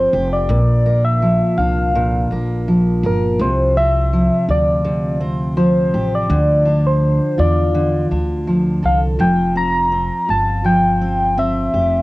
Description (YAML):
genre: acoustic pop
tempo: 83 BPM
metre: 4/4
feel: swing 55% on 16ths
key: unclear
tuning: A4 = 444 Hz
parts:
  - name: soft struck synth lead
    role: melody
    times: 0.0-12.0 s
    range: Bb4 to Bb5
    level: -18 LUFS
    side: equal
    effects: chorus, cassette tape
  - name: fingerpicked steel-string acoustic guitar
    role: accompaniment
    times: 0.0-12.0 s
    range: Bb2 to Bb4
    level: -18 LUFS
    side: equal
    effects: cassette tape
  - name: upright bass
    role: bass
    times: 0.0-12.0 s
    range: F1 to E2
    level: -19 LUFS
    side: equal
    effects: none
room: moderate booth ambience, RT60 0.2 s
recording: home recording on cassette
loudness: -14 LUFS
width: side -19 dB against mid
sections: 0.0-12.0 A section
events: none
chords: 0.0 Fsus2; 0.5 Bb; 3.4 Csus4; 6.3 Dm; 9.2 Fsus2